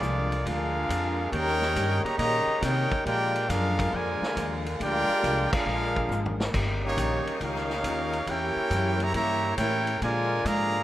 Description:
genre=jazz, big band swing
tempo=138 BPM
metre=4/4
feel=swing 68% on 8ths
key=unclear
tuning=A4 = 439 Hz
part: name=warm trumpet section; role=melody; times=0.0-10.8 s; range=Bb3 to Bb5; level=-27 LUFS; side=equal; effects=none
part: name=mellow trombone section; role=second line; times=0.0-10.8 s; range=Db3 to Bb4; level=-35 LUFS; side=right 2 dB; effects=none
part: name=vintage hollow-body jazz guitar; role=accompaniment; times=0.0-10.8 s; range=Bb2 to G4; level=-37 LUFS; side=left 4 dB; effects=none
part: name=warm saxophone section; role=sustained chords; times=0.0-10.8 s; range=Db3 to Bb4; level=-36 LUFS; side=equal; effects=none
part: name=upright bass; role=bass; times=0.0-10.8 s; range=G1 to C3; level=-31 LUFS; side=equal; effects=none
part: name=vintage drum kit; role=drums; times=0.0-10.6 s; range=crash cymbal, hi-hat, kick drum, ride cymbal, snare drum, toms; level=-34 LUFS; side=equal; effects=none
room=light reverb, studio ambience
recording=rough home demo mix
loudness=-24 LUFS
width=side -14 dB against mid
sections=0.0-10.8 A section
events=band accent 5.5; drum fill 6.1-6.5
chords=0.0 Bb7; 1.3 Eb7; 3.1 Bb7; 6.5 Eb7; 8.3 Edim7; 10.0 Bb7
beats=0.02 0.45 0.89 | 1.32 1.76 2.19 2.63 | 3.06 3.50 3.93 4.37 | 4.80 5.24 5.67 6.10 | 6.54 6.97 7.41 7.84 | 8.28 8.71 9.15 9.58 | 10.02 10.45

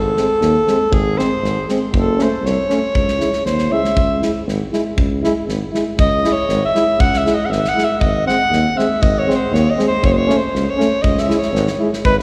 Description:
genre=balkan folk, Balkan brass band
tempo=119 BPM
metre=2/4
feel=straight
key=C# harmonic minor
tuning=A4 = 440 Hz
part: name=clear alto saxophone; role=second line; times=0.0-12.2 s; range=G#3 to F#5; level=-20 LUFS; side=equal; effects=none
part: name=warm tuba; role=bass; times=0.0-12.2 s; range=F#1 to D#2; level=-23 LUFS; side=equal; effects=none
part: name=mellow euphonium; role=accompaniment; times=0.2-11.9 s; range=G#3 to A3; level=-26 LUFS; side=equal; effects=none
part: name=warm trombone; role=accompaniment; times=0.2-11.9 s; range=B#3 to E4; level=-26 LUFS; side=equal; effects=none
part: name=loose indie drum kit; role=percussion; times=0.2-12.2 s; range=kick drum, snare drum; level=-24 LUFS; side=equal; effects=none
part: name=clear flugelhorn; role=melody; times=12.0-12.2 s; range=B4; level=-16 LUFS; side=equal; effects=none
room=wet church reverb, RT60 3.4 s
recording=recorded in a church or concert hall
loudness=-16 LUFS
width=mono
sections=0.0-12.0 A section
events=alto saxophone solo 0.0-12.0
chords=0.0 G#; 1.9 F#m; 3.0 C#m; 8.0 G#; 10.0 F#m; 11.0 C#m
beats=0.42 | 0.93 1.43 | 1.94 2.44 | 2.95 3.46 | 3.96 4.47 | 4.98 5.48 | 5.99 6.49 | 7.00 7.50 | 8.01 8.51 | 9.02 9.52 | 10.03 10.53 | 11.03 11.54 | 12.04

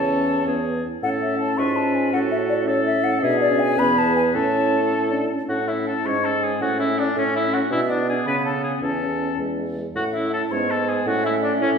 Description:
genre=quick classical-period movement for wind quintet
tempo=108 BPM (dotted quarters)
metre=6/8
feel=straight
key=A major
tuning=A4 = 440 Hz
part: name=mellow hollow silver concert flute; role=melody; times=0.0-11.7 s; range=C#5 to C#6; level=-26 LUFS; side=left 4 dB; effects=none
part: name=clear oboe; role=second line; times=0.0-11.7 s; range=C#4 to C#5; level=-26 LUFS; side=left 3 dB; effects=none
part: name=bright clarinet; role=accompaniment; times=0.0-11.8 s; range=G#3 to C#5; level=-27 LUFS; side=right 3 dB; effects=none
part: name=warm French horn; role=accompaniment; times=0.0-11.8 s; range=G#3 to D4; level=-26 LUFS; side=left 1 dB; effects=none
part: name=dark bassoon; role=bass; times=0.0-11.8 s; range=E2 to C#3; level=-25 LUFS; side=right 2 dB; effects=none
room=wet recital hall reverb, RT60 1.6 s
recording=heard from further back in the room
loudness=-19 LUFS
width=side -6 dB against mid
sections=0.0-5.5 A section; 5.5-11.8 A section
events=none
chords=0.5 E; 1.0 A; 1.6 C#7/G#; 2.1 F#m/A; 3.2 Bm69; 3.8 E; 4.4 A; 6.1 C#5/G#; 6.6 A6; 7.7 E7/B; 8.3 Amaj9/C#; 8.8 A/E; 9.4 E; 10.0 A; 10.5 Amaj9/G#; 11.1 A6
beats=0.47 | 1.03 1.59 | 2.13 2.68 | 3.23 3.79 | 4.36 4.93 | 5.50 6.06 | 6.62 7.17 | 7.71 8.27 | 8.82 9.39 | 9.96 10.52 | 11.07 11.62

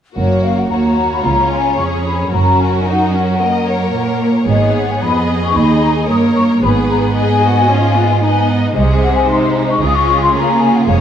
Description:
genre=quick classical-period movement for symphony orchestra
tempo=112 BPM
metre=4/4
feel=straight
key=F# major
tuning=A4 = 440 Hz
part: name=rich chamber violin section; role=melody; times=0.2-11.0 s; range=Ab4 to D#5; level=-23 LUFS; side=left 4 dB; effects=none
part: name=mellow hollow flute section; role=second line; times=0.2-10.9 s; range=C#5 to D#6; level=-17 LUFS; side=left 4 dB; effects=none
part: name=rich chamber violin section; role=second line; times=0.2-11.0 s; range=D#4 to A#4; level=-20 LUFS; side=left 2 dB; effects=none
part: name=rich chamber viola section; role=accompaniment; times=0.2-11.0 s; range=Ab3 to D#4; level=-18 LUFS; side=right 2 dB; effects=none
part: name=clear chamber cello section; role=bass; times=0.2-11.0 s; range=C#2 to Db3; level=-18 LUFS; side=right 2 dB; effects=none
part: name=rich chamber double bass section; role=bass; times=0.2-11.0 s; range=F1 to D#2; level=-18 LUFS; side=right 2 dB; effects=none
room=moderate concert hall reverb, RT60 2.3 s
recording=dark, warm production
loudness=-11 LUFS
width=side -9 dB against mid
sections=0.2-11.0 A section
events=none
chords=0.2 F#; 1.3 C#; 2.3 F#; 4.5 G#m; 5.6 D#7; 6.6 G#m; 8.8 Ab/C; 9.8 Db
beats=| 0.17 0.71 1.25 1.79 | 2.33 2.87 3.40 3.94 | 4.48 5.02 5.56 6.10 | 6.63 7.17 7.70 8.22 | 8.76 9.29 9.82 10.35 | 10.88

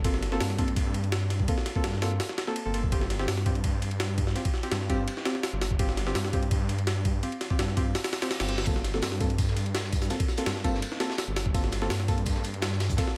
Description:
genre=drum and bass, jungle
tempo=167 BPM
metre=4/4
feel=straight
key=G minor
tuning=A4 = 440 Hz
part: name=deep mellow chord stab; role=stabs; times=0.0-13.0 s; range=Bb3 to A4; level=-36 LUFS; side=equal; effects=chorus, cassette tape, dub echo
part: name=detuned saw bass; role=bass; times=0.0-13.0 s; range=G1 to G2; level=-32 LUFS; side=equal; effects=tube saturation
part: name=jungle sampler-style drum kit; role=drums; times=0.0-13.2 s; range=hi-hat, kick drum, ride cymbal, snare drum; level=-31 LUFS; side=equal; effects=none
part: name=reverse cymbal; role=sound effects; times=8.1-8.7 s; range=none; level=-41 LUFS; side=equal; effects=none
part: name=crunchy breakbeat drum kit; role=drums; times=8.7-13.1 s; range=hi-hat, snare drum, tambourine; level=-43 LUFS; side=equal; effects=high-pass filter on hats, high-pass filter on snare, high-pass filter on perc, high-pass filter on room
room=small room ambience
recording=none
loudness=-28 LUFS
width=mono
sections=0.0-13.2 A section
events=reverse cymbal 8.1-8.7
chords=0.0 Gm11; 2.9 G7sus4; 8.7 Gm11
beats=| 0.05 0.41 0.76 1.12 | 1.48 1.84 2.20 2.56 | 2.92 3.28 3.64 4.00 | 4.36 4.72 5.08 5.43 | 5.79 6.15 6.51 6.87 | 7.23 7.59 7.95 8.31 | 8.67 9.03 9.39 9.75 | 10.11 10.46 10.82 11.18 | 11.54 11.90 12.26 12.62 | 12.98

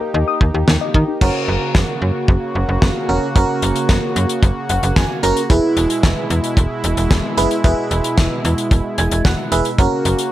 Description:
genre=synth-pop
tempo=112 BPM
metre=4/4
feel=straight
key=unclear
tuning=A4 = 439 Hz
part: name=brassy analog pad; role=sustained chords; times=0.0-10.3 s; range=B2 to G4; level=-22 LUFS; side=right 1 dB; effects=chorus
part: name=soft round pluck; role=arpeggios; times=0.0-1.1 s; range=D#4 to D#6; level=-23 LUFS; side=left 13 dB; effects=chorus, analog delay
part: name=slap-like FM bass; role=bass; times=0.1-10.2 s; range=E1 to D#3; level=-18 LUFS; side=equal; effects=none
part: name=damped 70s drum kit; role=drums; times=0.4-10.3 s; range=crash cymbal, hi-hat, kick drum, snare drum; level=-17 LUFS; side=equal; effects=gated reverb
part: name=FM electric piano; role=accompaniment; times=1.2-10.3 s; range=C#4 to A#5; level=-19 LUFS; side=right 2 dB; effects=chorus, phaser
room=light reverb, small room ambience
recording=none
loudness=-14 LUFS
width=side -14 dB against mid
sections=0.0-1.2 A section; 1.2-10.3 B section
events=FM electric piano fill 4.4-5.5, 8.7-9.8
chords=0.0 D#; 1.2 F#; 5.5 E; 9.8 F#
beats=0.14 0.68 | 1.21 1.75 2.29 2.82 | 3.36 3.89 4.43 4.96 | 5.50 6.04 6.57 7.11 | 7.64 8.18 8.71 9.25 | 9.79

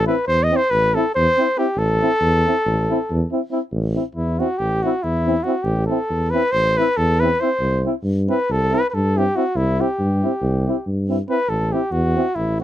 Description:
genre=balkan folk, Balkan brass band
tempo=278 BPM (eighths)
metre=9/8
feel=straight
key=A minor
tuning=A4 = 440 Hz
part: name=dark cornet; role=melody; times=0.0-12.6 s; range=E4 to D#5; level=-19 LUFS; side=equal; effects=none
part: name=warm tuba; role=bass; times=0.0-12.6 s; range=A1 to G2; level=-21 LUFS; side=equal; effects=none
part: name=clear euphonium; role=accompaniment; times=0.1-12.6 s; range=C4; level=-25 LUFS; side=right 6 dB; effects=none
part: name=clear trombone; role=accompaniment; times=0.1-12.2 s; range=E4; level=-24 LUFS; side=left 6 dB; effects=none
room=little or no reverb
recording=close, detailed microphones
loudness=-17 LUFS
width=side -12 dB against mid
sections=0.0-3.7 A section; 3.7-12.6 B section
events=cornet solo 3.7-12.6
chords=0.0 Am; 7.6 C; 11.5 Am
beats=0.05 0.26 0.48 0.69 0.91 1.12 1.34 1.55 | 1.77 1.99 2.20 2.42 2.63 2.85 3.06 3.28 3.50 | 3.71 3.93 4.14 4.36 4.58 4.79 5.01 5.22 5.44 | 5.66 5.87 6.09 6.31 6.52 6.74 6.96 7.17 7.39 | 7.60 7.82 8.04 8.25 8.47 8.68 8.90 9.12 9.33 | 9.55 9.76 9.98 10.19 10.41 10.62 10.84 11.06 11.27 | 11.49 11.70 11.92 12.13 12.35 12.56

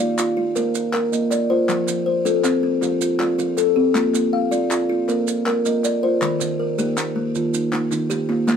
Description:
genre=southern african traditional, mbira-style interlocking cycle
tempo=106 BPM (dotted quarters)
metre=12/8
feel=straight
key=Bb major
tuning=A4 = 440 Hz
part: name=buzzing kalimba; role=arpeggios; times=0.0-8.6 s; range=Eb3 to F5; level=-20 LUFS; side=left 3 dB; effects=none
part: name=kalimba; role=arpeggios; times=0.0-8.6 s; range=Eb3 to G5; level=-22 LUFS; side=right 3 dB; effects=none
part: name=group handclap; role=percussion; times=0.2-8.6 s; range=none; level=-28 LUFS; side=left 2 dB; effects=none
part: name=maracas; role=percussion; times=0.2-8.6 s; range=none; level=-30 LUFS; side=right 9 dB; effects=none
room=light reverb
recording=none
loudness=-18 LUFS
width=side -7 dB against mid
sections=0.0-8.6 A section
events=none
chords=0.0 Bb; 1.7 F; 4.0 Bb; 6.2 Eb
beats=0.56 1.12 | 1.69 2.26 2.82 3.39 | 3.95 4.52 5.08 5.65 | 6.22 6.78 7.35 7.91 | 8.48

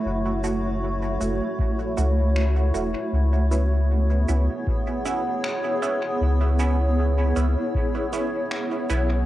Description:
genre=ambient dub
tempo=78 BPM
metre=4/4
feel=swing 58% on 16ths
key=unclear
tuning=A4 = 440 Hz
part: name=granular cloud pad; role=sustained chords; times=0.0-9.3 s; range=A3 to C#5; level=-25 LUFS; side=equal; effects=built-in reverb
part: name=soft dub sub bass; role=bass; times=0.1-9.2 s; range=E1 to C#2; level=-21 LUFS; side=equal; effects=none
part: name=filtered dub chord stab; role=stabs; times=0.4-9.2 s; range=A3 to F#4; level=-32 LUFS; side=right 5 dB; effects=phaser, dub echo
part: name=electronic shaker and finger snaps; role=drums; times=0.4-9.1 s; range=none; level=-36 LUFS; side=equal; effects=overdrive, cassette tape, dub echo
part: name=electronic kick drum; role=drums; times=1.6-7.9 s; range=none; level=-26 LUFS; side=equal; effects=cassette tape
room=light reverb, digital ambience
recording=home recording on cassette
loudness=-21 LUFS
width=side -14 dB against mid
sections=0.0-9.3 A section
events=none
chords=0.0 F#m7; 3.1 C#m7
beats=| 0.05 0.82 1.59 2.36 | 3.13 3.90 4.67 5.44 | 6.21 6.97 7.74 8.51

